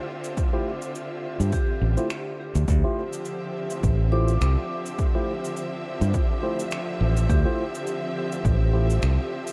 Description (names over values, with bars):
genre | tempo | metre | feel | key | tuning
ambient dub | 104 BPM | 4/4 | swing 56% on 16ths | D minor | A4 = 442 Hz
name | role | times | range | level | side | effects
clear symphonic string section | sustained chords | 0.0-9.5 s | D3 to E5 | -34 LUFS | equal | none
vibraphone with hard mallets | arpeggios | 0.0-9.5 s | G4 to D6 | -38 LUFS | equal | dub echo
cabasa and finger snaps | drums | 0.2-9.5 s | none | -40 LUFS | equal | none
electronic kick drum | drums | 0.4-8.6 s | none | -27 LUFS | equal | overdrive
bright tine electric piano | stabs | 0.5-8.9 s | A3 to C5 | -35 LUFS | equal | subtle chorus, dub echo
fingered electric bass | bass | 1.4-9.2 s | A1 to G2 | -23 LUFS | equal | none
room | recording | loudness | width
light reverb, studio reverb | none | -25 LUFS | mono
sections
0.0-2.7 A section; 2.7-9.5 B section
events
none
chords
0.0 Dm11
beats
| 0.37 0.95 1.52 2.10 | 2.68 3.26 3.83 4.41 | 4.99 5.56 6.14 6.72 | 7.29 7.87 8.45 9.03